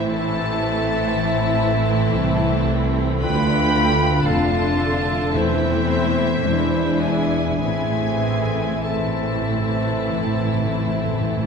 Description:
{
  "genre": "classical, slow romantic movement for symphony orchestra",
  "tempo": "47-59 BPM",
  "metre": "4/4",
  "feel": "rubato",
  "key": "A minor",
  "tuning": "A4 = 440 Hz",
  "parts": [
    { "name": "rich symphonic violin section", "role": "melody", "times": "0.0-11.5 s", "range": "E5 to B5", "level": "-28 LUFS", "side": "left 1 dB", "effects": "none" },
    { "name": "clear clarinet", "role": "second line", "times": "0.0-11.5 s", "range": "E4 to B4", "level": "-30 LUFS", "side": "right 1 dB", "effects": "none" },
    { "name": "rich studio violin section", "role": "second line", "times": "0.0-11.5 s", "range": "C4 to F4", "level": "-28 LUFS", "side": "left 2 dB", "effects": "none" },
    { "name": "silver concert flute", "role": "second line", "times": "0.0-11.5 s", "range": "C5 to G5", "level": "-27 LUFS", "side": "left 2 dB", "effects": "none" },
    { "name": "rich symphonic viola section", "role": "accompaniment", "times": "0.0-11.5 s", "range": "D3 to A3", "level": "-27 LUFS", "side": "right 1 dB", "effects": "none" },
    { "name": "mellow French horn section", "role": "sustained chords", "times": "0.0-11.5 s", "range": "E3 to F4", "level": "-27 LUFS", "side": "left 2 dB", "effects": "none" },
    { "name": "concert harp", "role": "arpeggios", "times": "0.0-11.5 s", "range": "A2 to D5", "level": "-27 LUFS", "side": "left 5 dB", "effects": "none" },
    { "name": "rich symphonic cello section", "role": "bass", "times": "0.0-11.5 s", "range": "C2 to A2", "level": "-27 LUFS", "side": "right 3 dB", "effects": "none" },
    { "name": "rich symphonic double bass section", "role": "bass", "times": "0.0-11.5 s", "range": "E1 to D2", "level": "-26 LUFS", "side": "right 4 dB", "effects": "none" },
    { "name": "timpani", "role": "percussion", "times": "5.3-11.4 s", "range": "E2 to A2", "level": "-29 LUFS", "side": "right 2 dB", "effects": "none" }
  ],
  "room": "wet recital hall reverb, RT60 1.7 s",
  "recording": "heard from further back in the room, nothing above 10.3 kHz",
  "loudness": "-18 LUFS",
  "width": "side -6 dB against mid",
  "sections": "0.0-11.5 A section",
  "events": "timpani fill 7.6-11.5",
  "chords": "0.0 Am; 3.2 Dm; 5.3 Am/E; 6.4 E7; 7.6 Am",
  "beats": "0.12 1.16 2.19 | 3.22 4.27 5.34 6.44 | 7.62 8.85 10.10 11.34"
}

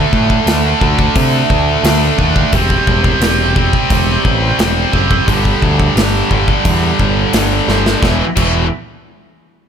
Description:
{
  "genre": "heavy metal",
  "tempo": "87 BPM",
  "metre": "4/4",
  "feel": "straight",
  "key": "E minor",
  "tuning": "A4 = 441 Hz",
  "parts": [
    { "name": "scooped high-gain guitar", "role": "riff", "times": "0.0-8.6 s", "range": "E2 to D4", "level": "-17 LUFS", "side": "left 14 dB", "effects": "distortion" },
    { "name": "tight distorted guitar", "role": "riff", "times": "0.0-8.6 s", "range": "E2 to D4", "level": "-16 LUFS", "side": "right 13 dB", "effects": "distortion" },
    { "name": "growling picked electric bass", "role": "bass", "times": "0.0-8.7 s", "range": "E1 to C3", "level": "-16 LUFS", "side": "left 1 dB", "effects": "overdrive" },
    { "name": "big rock drum kit", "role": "drums", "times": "0.1-8.5 s", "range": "crash cymbal, hi-hat, kick drum, snare drum", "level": "-16 LUFS", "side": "equal", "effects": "none" }
  ],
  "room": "small room reverb",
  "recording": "none",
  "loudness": "-10 LUFS",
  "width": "side -8 dB against mid",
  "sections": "0.0-8.0 A section; 8.0-9.7 B section",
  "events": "drum fill 7.7-8.0",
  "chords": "0.0 D5; 2.5 C/E; 5.3 G5; 8.0 E5",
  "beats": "0.47 1.16 1.84 | 2.52 3.21 3.89 4.58 | 5.27 5.96 6.64 7.33 | 8.02"
}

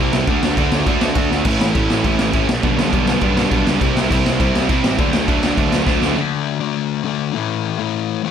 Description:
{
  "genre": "punk rock",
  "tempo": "204 BPM",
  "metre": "4/4",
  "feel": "straight",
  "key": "unclear",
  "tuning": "A4 = 436 Hz",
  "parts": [
    { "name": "heavy high-gain guitar", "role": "riff", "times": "0.0-6.2 s", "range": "A2 to F#4", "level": "-24 LUFS", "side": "right 4 dB", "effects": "distortion" },
    { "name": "overdriven semi-hollow guitar", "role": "riff", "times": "0.0-6.2 s", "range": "A2 to F#4", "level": "-20 LUFS", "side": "right 11 dB", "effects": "none" },
    { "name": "sludgy distorted guitar", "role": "riff", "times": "0.0-8.3 s", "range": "G2 to D4", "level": "-21 LUFS", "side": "left 10 dB", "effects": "overdrive" },
    { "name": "fuzz picked electric bass", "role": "bass", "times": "0.0-6.1 s", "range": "A1 to D2", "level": "-24 LUFS", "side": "equal", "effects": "overdrive" },
    { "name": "raw garage drum kit", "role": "drums", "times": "0.1-6.1 s", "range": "crash cymbal, kick drum, snare drum", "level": "-19 LUFS", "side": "equal", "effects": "none" }
  ],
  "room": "little or no reverb",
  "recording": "none",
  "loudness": "-15 LUFS",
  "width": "side -8 dB against mid",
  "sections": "0.0-6.2 A section; 6.2-8.3 B section",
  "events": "drum fill 1.3, 5.9",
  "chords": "0.3 D; 1.5 A; 2.5 G/B; 3.8 C; 5.0 D; 6.2 D5; 7.3 A5",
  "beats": "| 0.28 0.57 0.86 1.16 | 1.45 1.75 2.04 2.33 | 2.63 2.92 3.22 3.51 | 3.81 4.10 4.40 4.69 | 4.99 5.28 5.58 5.87 | 6.17 6.46 6.76 7.05 | 7.35 7.64 7.94 8.23"
}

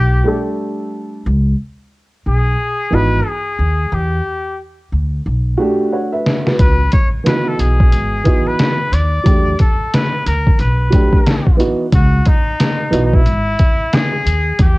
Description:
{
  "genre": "hip hop, jazz-hop",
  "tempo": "90 BPM",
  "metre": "4/4",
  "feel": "swing 62% on 16ths",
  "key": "C# minor",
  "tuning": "A4 = 436 Hz",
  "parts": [
    { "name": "trumpet with straight mute", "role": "melody", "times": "0.0-14.8 s", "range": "D#4 to D5", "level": "-20 LUFS", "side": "left 2 dB", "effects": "cassette tape, plate reverb" },
    { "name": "upright bass", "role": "bass", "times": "0.0-14.8 s", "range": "G#1 to E2", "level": "-16 LUFS", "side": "equal", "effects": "none" },
    { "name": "dark upright piano", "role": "accompaniment", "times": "0.2-13.2 s", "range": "E3 to F#5", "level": "-18 LUFS", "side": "right 2 dB", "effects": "cassette tape, plate reverb" },
    { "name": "trip hop sampler-style drum kit", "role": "drums", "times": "6.3-14.8 s", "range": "hi-hat, kick drum, snare drum", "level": "-13 LUFS", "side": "equal", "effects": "overdrive, vintage 12-bit sampler grit, cassette tape" }
  ],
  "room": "light reverb",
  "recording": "home recording on cassette",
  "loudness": "-13 LUFS",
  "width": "side -21 dB against mid",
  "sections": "0.0-14.8 A section",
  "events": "drum fill 5.9-6.6",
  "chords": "0.0 Em7 (rootless); 1.3 C#m11; 3.9 Em11; 6.6 C#m11 (rootless); 9.3 Em11; 11.9 C#m11",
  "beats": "0.60 | 1.26 1.93 2.60 3.26 | 3.93 4.60 5.26 5.93 | 6.60 7.26 7.93 8.60 | 9.26 9.93 10.60 11.26 | 11.93 12.60 13.26 13.93 | 14.60"
}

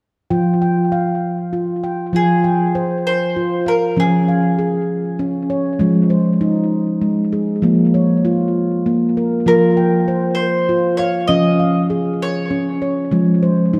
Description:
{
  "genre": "world meditative, meditative tuned percussion",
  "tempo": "66 BPM (dotted quarters)",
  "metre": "6/8",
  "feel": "straight",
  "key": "F minor",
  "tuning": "A4 = 439 Hz",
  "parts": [
    { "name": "handpan", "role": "arpeggios", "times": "0.3-13.8 s", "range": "F3 to G5", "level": "-18 LUFS", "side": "equal", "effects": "tape echo" },
    { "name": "bowl-back mandolin", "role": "melody", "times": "2.2-5.2, 9.5-12.9 s", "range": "Ab4 to Eb5", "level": "-21 LUFS", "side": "equal", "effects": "tape echo" }
  ],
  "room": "wet church reverb, RT60 2.6 s",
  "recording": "dark, warm production",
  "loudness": "-17 LUFS",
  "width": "mono",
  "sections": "0.3-2.1 A section; 2.1-13.8 B section",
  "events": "none",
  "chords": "0.3 Fsus2; 2.1 Fm; 4.0 Db/F; 5.8 Ab/F; 7.6 Bbm/F; 9.5 F5; 11.3 Db/F; 13.1 Ab/F",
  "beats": "| 0.31 1.23 | 2.14 3.06 | 3.98 4.89 | 5.81 6.72 | 7.64 8.55 | 9.47 10.38 | 11.30 12.21 | 13.13"
}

